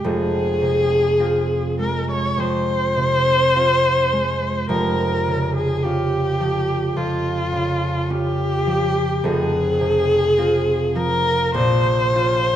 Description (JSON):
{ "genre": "classical, romantic duo for viola and harp", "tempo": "52 BPM", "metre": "4/4", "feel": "rubato", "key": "F minor", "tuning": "A4 = 442 Hz", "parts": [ { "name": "warm viola", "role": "melody", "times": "0.0-12.6 s", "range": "F4 to Db5", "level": "-19 LUFS", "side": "left 1 dB", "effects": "none" }, { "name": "concert harp", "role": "accompaniment", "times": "0.0-12.6 s", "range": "F1 to F4", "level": "-21 LUFS", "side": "right 2 dB", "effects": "none" } ], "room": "wet recital hall reverb, RT60 1.5 s", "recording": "minimal, uncompressed stereo recording", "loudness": "-17 LUFS", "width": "side -11 dB against mid", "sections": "0.1-12.6 A section", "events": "none", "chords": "0.1 Fm; 4.7 Bbm6/F (rootless); 9.2 Fm; 11.5 Bbm" }